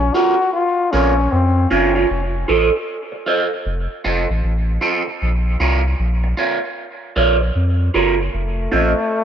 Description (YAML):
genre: dub reggae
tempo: 77 BPM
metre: 4/4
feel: swing 63% on 16ths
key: Bb harmonic minor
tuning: A4 = 444 Hz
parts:
  - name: clear trombone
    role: melody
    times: 0.0-2.1, 8.3-9.2 s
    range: A3 to Gb4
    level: -19 LUFS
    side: left 3 dB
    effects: dub echo
  - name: electric guitar at the edge of break-up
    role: accompaniment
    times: 0.0-8.9 s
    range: F4 to Db5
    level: -19 LUFS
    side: right 4 dB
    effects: phaser, dub echo
  - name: soft dub sub bass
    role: bass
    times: 0.0-8.9 s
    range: F1 to F2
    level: -18 LUFS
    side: equal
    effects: none
room: moderate spring reverb, RT60 1.1 s, small room ambience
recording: echo-heavy mix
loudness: -15 LUFS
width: side -8 dB against mid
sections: 0.0-9.2 A section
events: break 2.1-8.3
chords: 0.0 Bbm; 2.1 F; 5.2 Bbm; 8.3 F